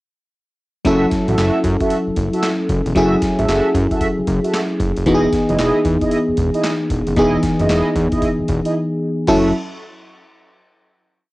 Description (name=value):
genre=R&B, new jack swing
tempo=114 BPM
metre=4/4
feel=swing 63% on 16ths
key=F# dorian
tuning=A4 = 438 Hz
part: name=FM electric piano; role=accompaniment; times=0.8-9.5 s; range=E3 to A4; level=-17 LUFS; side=left 1 dB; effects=chorus
part: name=mellow synth brass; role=stabs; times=0.8-9.5 s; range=E4 to E5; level=-22 LUFS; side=right 2 dB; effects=chorus
part: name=boom bap sampler-style drum kit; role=drums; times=0.8-9.4 s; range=crash cymbal, handclaps, hi-hat, kick drum, snare drum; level=-24 LUFS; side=equal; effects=cassette tape
part: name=fat analog bass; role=bass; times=0.9-9.5 s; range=E1 to F#2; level=-21 LUFS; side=equal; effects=none
room=light reverb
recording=home recording on cassette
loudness=-15 LUFS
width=side -19 dB against mid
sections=0.8-9.3 verse; 9.3-11.3 final chord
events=break 8.7-9.3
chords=0.8 F#m7; 5.1 Emaj7; 9.3 F#m7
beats=| 0.85 1.38 1.90 2.43 | 2.96 3.48 4.01 4.53 | 5.06 5.59 6.11 6.64 | 7.17 7.69 8.22 8.74 | 9.27